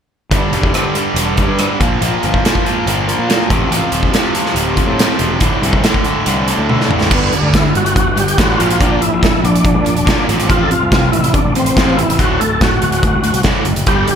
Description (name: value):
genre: classic rock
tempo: 141 BPM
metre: 4/4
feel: straight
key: unclear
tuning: A4 = 440 Hz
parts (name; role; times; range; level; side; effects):
- cranked stack guitar; riff; 0.3-14.2 s; D2 to Bb3; -20 LUFS; left 8 dB; overdrive, slapback echo
- cranked stack guitar; riff; 0.3-14.2 s; D2 to Bb3; -19 LUFS; right 9 dB; overdrive, slapback echo
- fuzz picked electric bass; bass; 0.3-14.0 s; D1 to Bb2; -19 LUFS; equal; overdrive
- big rock drum kit; drums; 0.3-14.2 s; crash cymbal, hi-hat, kick drum, rim click, snare drum, toms; -16 LUFS; equal; none
- overdriven tonewheel organ; melody; 7.1-14.2 s; B3 to A4; -17 LUFS; equal; chorus vibrato, fast rotary speaker, slapback echo
room: moderate lush hall reverb, RT60 1.6 s, small room ambience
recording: big arena sound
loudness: -11 LUFS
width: side -8 dB against mid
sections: 0.3-7.1 A section; 7.1-14.2 B section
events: drum fill 6.7-7.1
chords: 0.3 G5; 1.8 Bb5; 3.5 F; 5.4 D5; 7.1 G5; 8.6 Bb; 10.3 F/A; 12.2 D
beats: | 0.31 0.74 1.16 1.59 | 2.01 2.44 2.86 3.29 | 3.71 4.14 4.56 4.99 | 5.41 5.84 6.26 6.68 | 7.11 7.53 7.96 8.38 | 8.80 9.23 9.65 10.07 | 10.50 10.92 11.34 11.76 | 12.18 12.60 13.03 13.45 | 13.87